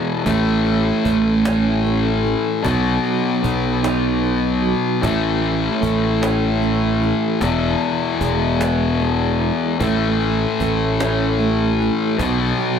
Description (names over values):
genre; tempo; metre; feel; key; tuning
quiet-loud alternative rock; 50 BPM (dotted quarters); 6/8; straight; A major; A4 = 440 Hz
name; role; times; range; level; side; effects
mellow electric guitar; arpeggios; 0.0-12.8 s; E2 to D#4; -22 LUFS; right 6 dB; harmonic tremolo
fuzz guitar; riff; 0.0-12.8 s; E2 to B3; -19 LUFS; left 5 dB; distortion
overdriven fingered electric bass; bass; 0.3-12.5 s; E1 to B1; -22 LUFS; right 1 dB; none
cajon; drums; 0.3-12.7 s; none; -28 LUFS; right 1 dB; none
room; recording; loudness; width
moderate studio reverb, RT60 0.7 s; none; -16 LUFS; side -7 dB against mid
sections
0.0-12.8 A section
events
none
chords
0.3 A; 2.6 B; 5.0 A; 7.4 E; 9.8 A; 12.2 B5